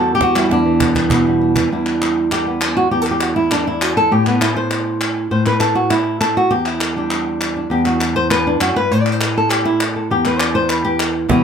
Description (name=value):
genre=flamenco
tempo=200 BPM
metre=4/4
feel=straight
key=E minor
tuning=A4 = 440 Hz
part: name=flamenco guitar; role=melody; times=0.0-11.4 s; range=E2 to D5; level=-15 LUFS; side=equal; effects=none
part: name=cajon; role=percussion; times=0.2-1.6, 11.3-11.4 s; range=none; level=-20 LUFS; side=right 5 dB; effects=none
part: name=palmas hand claps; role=percussion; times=0.4-11.1 s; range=none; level=-22 LUFS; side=left 1 dB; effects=none
room=moderate studio reverb, RT60 0.6 s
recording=close, detailed microphones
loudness=-14 LUFS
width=side -7 dB against mid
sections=0.0-1.7 A section; 1.7-11.3 B section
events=drum fill 0.5-1.7; nylon-string guitar solo 1.7-11.3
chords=0.0 Em7; 4.1 N.C.; 6.5 Em7; 8.9 N.C.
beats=0.21 | 0.51 0.81 1.11 1.41 | 1.71 2.01 2.31 2.62 | 2.92 3.22 3.52 3.82 | 4.12 4.42 4.72 5.02 | 5.32 5.62 5.92 6.22 | 6.52 6.82 7.11 7.41 | 7.71 8.01 8.31 8.61 | 8.91 9.21 9.51 9.81 | 10.10 10.40 10.70 11.00 | 11.30